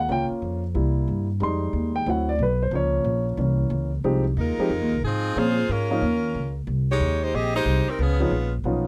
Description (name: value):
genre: jazz, big band swing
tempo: 182 BPM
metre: 4/4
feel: swing 64% on 8ths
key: F minor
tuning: A4 = 442 Hz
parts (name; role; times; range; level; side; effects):
- warm grand piano; accompaniment; 0.0-6.0, 8.2-8.8 s; E3 to C6; -28 LUFS; equal; none
- upright bass; bass; 0.0-8.9 s; Bb1 to Bb2; -26 LUFS; equal; none
- edgy saxophone section; melody; 4.4-8.5 s; F3 to Eb5; -28 LUFS; equal; none
room: little or no reverb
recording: dry, close 1970s-style studio recording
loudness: -24 LUFS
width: mono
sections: 0.0-4.0 A section; 4.0-8.9 B section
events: grand piano solo 0.0-4.0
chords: 0.1 Db6; 0.8 C7; 1.4 Fm7; 2.1 D7; 2.7 Bbm; 3.4 C7b9; 4.0 Fm7; 5.4 Bbm7; 6.0 Eb5; 6.7 Abmaj7; 8.0 Db7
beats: | 0.09 0.42 0.75 1.08 | 1.41 1.74 2.06 2.39 | 2.72 3.05 3.38 3.71 | 4.04 4.37 4.70 5.03 | 5.35 5.68 6.01 6.34 | 6.67 7.00 7.33 7.66 | 7.99 8.32 8.65